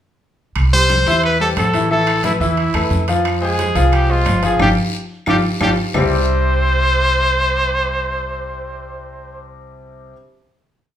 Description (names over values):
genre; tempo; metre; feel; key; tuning
latin, salsa; 178 BPM; 4/4; straight; C major; A4 = 440 Hz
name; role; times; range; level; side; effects
upright bass; bass; 0.6-10.1 s; G1 to F2; -20 LUFS; right 1 dB; none
claves; percussion; 0.6-6.0 s; none; -29 LUFS; left 1 dB; none
congas; percussion; 0.6-6.0 s; none; -24 LUFS; left 1 dB; none
guiro; percussion; 0.6-6.0 s; none; -33 LUFS; left 4 dB; none
timbales; percussion; 0.6-6.0 s; none; -26 LUFS; right 6 dB; none
bright trumpet; melody; 0.7-9.4 s; E4 to C5; -18 LUFS; equal; none
bright grand piano; accompaniment; 0.7-10.1 s; C3 to F5; -21 LUFS; left 2 dB; none
room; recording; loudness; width
moderate large studio reverb, RT60 0.9 s; band playing live in one room; -14 LUFS; side -10 dB against mid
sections
0.6-6.0 verse; 6.0-8.7 final chord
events
band accent 4.6-6.0; drum fill 5.1-6.0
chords
0.6 C; 1.9 Asus2; 3.3 Fm; 4.6 G5; 6.0 Cadd9